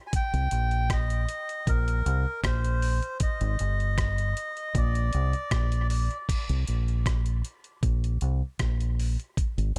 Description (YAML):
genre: dub reggae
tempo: 78 BPM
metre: 4/4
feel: straight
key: unclear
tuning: A4 = 438 Hz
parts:
  - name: melodica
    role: melody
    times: 0.1-5.9 s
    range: Bb4 to Ab5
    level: -35 LUFS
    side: equal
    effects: dub echo
  - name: dusty soul sampler-style drum kit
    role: drums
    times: 0.1-9.8 s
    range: crash cymbal, hi-hat, kick drum, rim click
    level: -32 LUFS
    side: equal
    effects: none
  - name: deep dub fingered electric bass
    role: bass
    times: 0.3-9.8 s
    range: G1 to C2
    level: -28 LUFS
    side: equal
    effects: none
room: little or no reverb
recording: none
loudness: -27 LUFS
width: mono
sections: 0.0-6.3 A section; 6.3-9.8 B section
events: none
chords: 0.0 Bbsus2; 3.2 N.C.